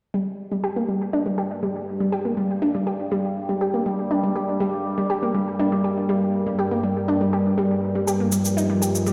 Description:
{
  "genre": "melodic techno",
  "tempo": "121 BPM",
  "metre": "4/4",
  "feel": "straight",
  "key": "G minor",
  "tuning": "A4 = 439 Hz",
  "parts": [
    { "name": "dark analog pad", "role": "sustained chords", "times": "0.1-9.1 s", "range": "G3 to D5", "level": "-29 LUFS", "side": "equal", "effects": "chorus" },
    { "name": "analog pluck", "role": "arpeggios", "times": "0.1-9.1 s", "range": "G3 to G4", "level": "-25 LUFS", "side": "equal", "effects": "chorus, dub echo" },
    { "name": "overtone-sweeping drone", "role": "drone", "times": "0.7-9.1 s", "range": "G2 to G3", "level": "-32 LUFS", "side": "equal", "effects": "chorus, built-in reverb" },
    { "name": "cabasa", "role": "percussion", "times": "8.1-9.1 s", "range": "none", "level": "-31 LUFS", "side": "equal", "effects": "none" }
  ],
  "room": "wet huge ambient reverb, RT60 4.8 s",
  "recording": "played on a big sound system in a bare room, stone room reverb",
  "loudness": "-23 LUFS",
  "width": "mono",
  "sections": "0.1-9.1 A section",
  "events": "filter sweep on synth pluck 0.1-9.1; filter sweep on analog synth pad 0.1-9.1",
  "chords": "0.1 Gm; 8.1 Eb69/G (rootless)"
}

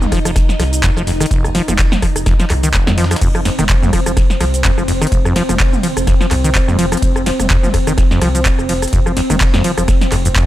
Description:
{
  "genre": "acid house",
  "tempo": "126 BPM",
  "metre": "4/4",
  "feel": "swing 56% on 16ths",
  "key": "unclear",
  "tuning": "A4 = 440 Hz",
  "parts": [
    { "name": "string machine, full ensemble", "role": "sustained chords", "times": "0.0-10.5 s", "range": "C4 to Eb4", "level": "-22 LUFS", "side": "equal", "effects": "ensemble chorus, sidechain pumping" },
    { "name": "deep acid bass", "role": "riff", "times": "0.0-10.5 s", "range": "F1 to F3", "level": "-19 LUFS", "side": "equal", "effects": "vintage 12-bit sampler grit, sidechain pumping, ping-pong delay" },
    { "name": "round analog bass", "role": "bass", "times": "0.0-10.4 s", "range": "F1 to F2", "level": "-20 LUFS", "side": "equal", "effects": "tube saturation, sidechain pumping" },
    { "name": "dusty soul sampler-style drum kit", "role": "drums", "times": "0.0-10.5 s", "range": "hi-hat, snare drum", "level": "-32 LUFS", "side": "equal", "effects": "none" },
    { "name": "electro analog drum machine", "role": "drums", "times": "0.0-10.5 s", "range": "cabasa, crash cymbal, handclaps, hi-hat, ride cymbal, rim click, snare drum, toms", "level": "-19 LUFS", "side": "equal", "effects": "none" },
    { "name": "electronic kick drum", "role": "drums", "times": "0.1-10.5 s", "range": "none", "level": "-15 LUFS", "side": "equal", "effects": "none" }
  ],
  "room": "digital ambience",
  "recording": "none",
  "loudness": "-12 LUFS",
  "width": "side -14 dB against mid",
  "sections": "0.0-10.5 A section",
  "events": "none",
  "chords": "0.0 F5"
}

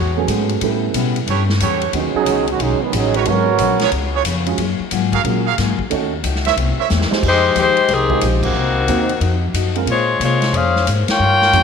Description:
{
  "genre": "jazz, big band swing",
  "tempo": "181 BPM",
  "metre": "4/4",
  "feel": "swing 64% on 8ths",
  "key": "F minor from 7.2 s",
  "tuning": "A4 = 441 Hz",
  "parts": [
    { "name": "picked steel-string acoustic guitar", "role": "accompaniment", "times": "0.0-11.6 s", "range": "G#2 to C5", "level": "-24 LUFS", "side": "left 14 dB", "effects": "none" },
    { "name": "clear trumpet section", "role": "stabs", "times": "0.0-6.9 s", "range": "E#4 to E#5", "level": "-23 LUFS", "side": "right 10 dB", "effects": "none" },
    { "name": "upright bass", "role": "bass", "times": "0.0-11.6 s", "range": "G#1 to C3", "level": "-20 LUFS", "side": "left 1 dB", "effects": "none" },
    { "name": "dark baby grand piano", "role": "accompaniment", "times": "0.2-11.6 s", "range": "F#3 to C#5", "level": "-24 LUFS", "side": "right 11 dB", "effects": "none" },
    { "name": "swinging big-band drum kit", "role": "drums", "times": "0.3-11.6 s", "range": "crash cymbal, hi-hat, kick drum, ride cymbal, snare drum", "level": "-24 LUFS", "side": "left 2 dB", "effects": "none" },
    { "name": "clear trombone section", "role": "second line", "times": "2.2-3.9 s", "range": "D#3 to C#5", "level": "-18 LUFS", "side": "right 8 dB", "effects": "none" },
    { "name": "clear saxophone section", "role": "melody", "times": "7.3-11.6 s", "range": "Eb3 to G5", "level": "-15 LUFS", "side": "left 4 dB", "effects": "none" }
  ],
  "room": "moderate plate reverb, RT60 2.5 s",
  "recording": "1960s-style stereo with parts hard left and right",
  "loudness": "-14 LUFS",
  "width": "side -6 dB against mid",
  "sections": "0.0-7.2 A section; 7.2-11.6 B section",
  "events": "trombone section solo 0.0-7.2; drum fill 6.9-7.2; band accent 8.4, 11.0",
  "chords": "0.0 Amaj13; 0.6 A9; 1.9 B69; 3.3 G#m11; 3.9 C#7; 4.6 F#maj9; 5.9 D#m7b5; 6.6 C7b9; 7.2 Fm9; 8.6 Cm7b5; 9.2 F7b9; 9.9 Bbm9"
}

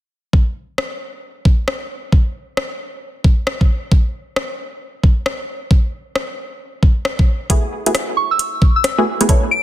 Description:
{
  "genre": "UK garage, two-step garage",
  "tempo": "134 BPM",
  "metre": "4/4",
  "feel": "swing 63% on 16ths",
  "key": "F# minor",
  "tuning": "A4 = 440 Hz",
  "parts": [
    { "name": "electronic kick drum", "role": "drums", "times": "0.3-9.4 s", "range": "none", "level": "-12 LUFS", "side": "equal", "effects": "studio reverb" },
    { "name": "garage drum kit", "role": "drums", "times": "0.8-9.4 s", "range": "hi-hat, rim click", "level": "-22 LUFS", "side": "left 1 dB", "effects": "soft clipping on snare, studio reverb" },
    { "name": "punchy chord stab", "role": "stabs", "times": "7.5-9.4 s", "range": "A3 to C#5", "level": "-18 LUFS", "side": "right 1 dB", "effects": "chorus, vintage 12-bit sampler grit, tape echo" },
    { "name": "soft synth bell", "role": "melody", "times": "8.2-9.6 s", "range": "C#6 to D7", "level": "-17 LUFS", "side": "equal", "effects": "chorus, phaser, vintage 12-bit sampler grit, tape echo" }
  ],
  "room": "digital ambience",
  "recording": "dense, heavily limited modern master",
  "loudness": "-15 LUFS",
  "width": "side -13 dB against mid",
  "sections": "0.3-9.6 A section",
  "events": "none",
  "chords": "0.3 N.C.; 7.5 F#m11"
}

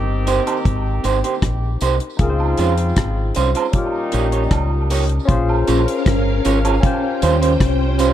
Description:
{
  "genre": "lovers rock reggae",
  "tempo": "78 BPM",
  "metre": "4/4",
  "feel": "straight",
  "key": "Ab major",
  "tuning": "A4 = 437 Hz",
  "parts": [
    { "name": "warm horn section", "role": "second line", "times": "0.0-4.9 s", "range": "Bb2 to G4", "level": "-26 LUFS", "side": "equal", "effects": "tape echo" },
    { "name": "barky tine electric piano", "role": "accompaniment", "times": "0.0-8.1 s", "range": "Db4 to C5", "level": "-24 LUFS", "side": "left 4 dB", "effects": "phaser" },
    { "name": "deep dub fingered electric bass", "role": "bass", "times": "0.0-8.1 s", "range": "G1 to F2", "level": "-19 LUFS", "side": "equal", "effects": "none" },
    { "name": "electric guitar through a small old amp", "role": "stabs", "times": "0.3-8.1 s", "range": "G3 to Db5", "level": "-22 LUFS", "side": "right 6 dB", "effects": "none" },
    { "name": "deep reggae drum kit", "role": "drums", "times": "0.3-8.1 s", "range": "hi-hat, kick drum, rim click", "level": "-19 LUFS", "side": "equal", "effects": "none" },
    { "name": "tambourine and woodblock", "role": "percussion", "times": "0.3-8.1 s", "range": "none", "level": "-31 LUFS", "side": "right 7 dB", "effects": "tape echo" },
    { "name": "soft string machine", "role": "second line", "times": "5.3-8.1 s", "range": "Db4 to G5", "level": "-21 LUFS", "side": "left 1 dB", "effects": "ensemble chorus, tape echo" }
  ],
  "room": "small room ambience",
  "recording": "dark, warm production",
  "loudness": "-15 LUFS",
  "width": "side -11 dB against mid",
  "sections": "0.0-5.3 A section; 5.3-8.1 B section",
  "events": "none",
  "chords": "0.0 Abmaj9; 2.2 Dbmaj7; 3.7 Eb7; 5.3 Bbm7; 6.8 Eb13"
}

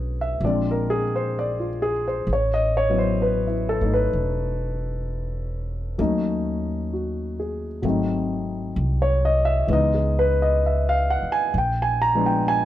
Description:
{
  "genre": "jazz ballad",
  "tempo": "65 BPM",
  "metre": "4/4",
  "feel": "swing 66% on 8ths",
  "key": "unclear",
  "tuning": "A4 = 439 Hz",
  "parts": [
    { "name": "warm concert grand piano", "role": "accompaniment", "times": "0.0-12.7 s", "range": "D3 to A#5", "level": "-22 LUFS", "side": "equal", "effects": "none" },
    { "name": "upright bass", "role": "bass", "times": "0.0-12.7 s", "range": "E1 to D#2", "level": "-25 LUFS", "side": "equal", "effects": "none" }
  ],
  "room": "light reverb",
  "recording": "dark, warm production",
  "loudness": "-20 LUFS",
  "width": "side -13 dB against mid",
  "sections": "0.0-12.7 A section",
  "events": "none",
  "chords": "0.4 A#9; 2.3 A6; 6.0 D#m7b5; 7.8 G#7b9; 9.7 C#m9; 11.5 A#7b9"
}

